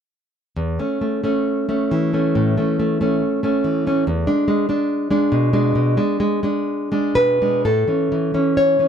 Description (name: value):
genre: romantic piece for solo classical guitar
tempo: 58-73 BPM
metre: 4/4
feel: rubato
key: A major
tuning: A4 = 438 Hz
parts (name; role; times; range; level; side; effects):
- nylon-string guitar; solo; 0.6-8.9 s; E2 to C#5; -16 LUFS; equal; none
room: light reverb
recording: dry, close 1970s-style studio recording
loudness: -17 LUFS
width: side -8 dB against mid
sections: 0.5-7.7 A section; 7.7-8.9 B section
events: none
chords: 0.5 A/E; 4.0 E7 (rootless); 7.7 A